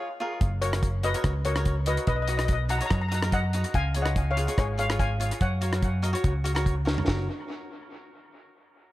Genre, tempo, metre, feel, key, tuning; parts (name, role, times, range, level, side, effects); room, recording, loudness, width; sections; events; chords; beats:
calypso; 144 BPM; 4/4; straight; F# major; A4 = 440 Hz
cavaquinho; accompaniment; 0.0-7.3 s; D#4 to D#5; -34 LUFS; equal; dub echo
fingered electric bass; bass; 0.4-7.3 s; F#1 to F#2; -27 LUFS; equal
deep reggae drum kit; drums; 0.4-7.2 s; hi-hat, kick drum, rim click, snare drum, toms; -29 LUFS; equal; dub echo
steel pan; melody; 0.6-5.8 s; G#4 to A#5; -31 LUFS; left 2 dB; dub echo
small room ambience; echo-heavy mix; -24 LUFS; side -16 dB against mid
0.0-7.1 A section; 7.1-8.7 B section
drum fill 6.9
0.4 F#; 2.1 B; 3.7 C#; 5.4 F#
| 0.41 0.82 1.24 1.66 | 2.07 2.49 2.91 3.33 | 3.74 4.16 4.58 4.99 | 5.41 5.83 6.24 6.66 | 7.08